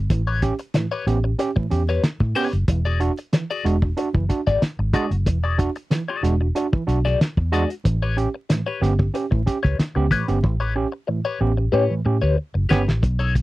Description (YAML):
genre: funk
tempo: 93 BPM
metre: 4/4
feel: straight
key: unclear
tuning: A4 = 440 Hz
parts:
  - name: vintage muted fingered electric bass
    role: bass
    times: 0.0-13.4 s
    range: E1 to A2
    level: -21 LUFS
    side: equal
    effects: none
  - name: electric guitar at the edge of break-up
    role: accompaniment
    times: 0.1-13.4 s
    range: D#4 to D5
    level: -24 LUFS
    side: left 6 dB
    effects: wah, phaser
  - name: overdriven tine electric piano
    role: stabs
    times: 0.1-12.8 s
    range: A2 to G4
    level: -24 LUFS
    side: right 3 dB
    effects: none
  - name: cloth-damped thuddy drum kit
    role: drums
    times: 0.1-13.4 s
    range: hi-hat, kick drum, snare drum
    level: -21 LUFS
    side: equal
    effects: none
room: little or no reverb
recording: dry, close 1970s-style studio recording, vinyl crackle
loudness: -19 LUFS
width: side -17 dB against mid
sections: 0.0-13.0 A section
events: drum fill 10.4-13.0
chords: 0.0 A9; 2.7 E9; 7.8 A9